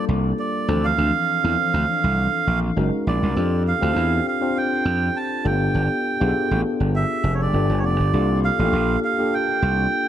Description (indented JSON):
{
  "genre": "polished 1980s jazz-funk pop",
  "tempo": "101 BPM",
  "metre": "4/4",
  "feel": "swing 54% on 16ths",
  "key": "F major",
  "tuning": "A4 = 440 Hz",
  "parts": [
    { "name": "melodica", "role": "melody", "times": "0.0-10.1 s", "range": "Db5 to A5", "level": "-23 LUFS", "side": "right 5 dB", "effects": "none" },
    { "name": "tine electric piano", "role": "accompaniment", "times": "0.0-10.1 s", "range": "E3 to A5", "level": "-24 LUFS", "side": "left 3 dB", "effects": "lush chorus" },
    { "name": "gritty slap bass", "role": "bass", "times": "0.1-9.9 s", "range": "F1 to F2", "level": "-21 LUFS", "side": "right 1 dB", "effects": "overdrive" }
  ],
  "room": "light reverb, small room ambience",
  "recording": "dark, warm production",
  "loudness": "-18 LUFS",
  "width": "side -10 dB against mid",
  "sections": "0.0-10.1 A section",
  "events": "none",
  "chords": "0.0 C13sus4; 0.7 Bbmaj9#11/D (rootless); 2.8 Gb69; 3.4 F69; 5.5 G9; 8.1 C13sus4"
}